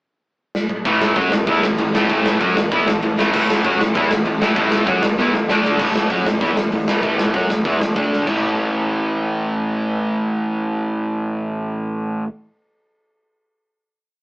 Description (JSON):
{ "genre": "punk rock", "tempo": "194 BPM", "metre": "4/4", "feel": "straight", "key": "A major", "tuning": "A4 = 435 Hz", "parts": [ { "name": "big rock drum kit", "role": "drums", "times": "0.5-8.3 s", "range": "crash cymbal, hi-hat, kick drum, ride cymbal, snare drum, toms", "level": "-20 LUFS", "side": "equal", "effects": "none" }, { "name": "distorted electric guitar", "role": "riff", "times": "0.9-12.3 s", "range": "A2 to F#4", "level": "-21 LUFS", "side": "right 1 dB", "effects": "distortion" }, { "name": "distorted electric guitar", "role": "riff", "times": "0.9-5.8 s", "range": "A2 to F#4", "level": "-20 LUFS", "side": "equal", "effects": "overdrive" }, { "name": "overdriven semi-hollow guitar", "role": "riff", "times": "0.9-12.3 s", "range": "A2 to F#4", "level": "-25 LUFS", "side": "left 1 dB", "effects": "none" }, { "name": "fuzz picked electric bass", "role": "bass", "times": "0.9-12.2 s", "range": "A1 to F#2", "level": "-24 LUFS", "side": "equal", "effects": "overdrive" } ], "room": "light reverb", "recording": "rough rehearsal-room recording, AM radio sound", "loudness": "-16 LUFS", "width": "side -25 dB against mid", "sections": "0.0-0.9 pickup bar; 0.9-5.8 riff; 5.8-8.3 outro; 8.3-10.8 final chord", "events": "drum fill 0.5-0.9, 5.2-5.8, 8.1", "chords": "0.0 N.C.; 0.9 A; 5.5 D5; 5.8 A; 8.0 D5; 8.3 A5" }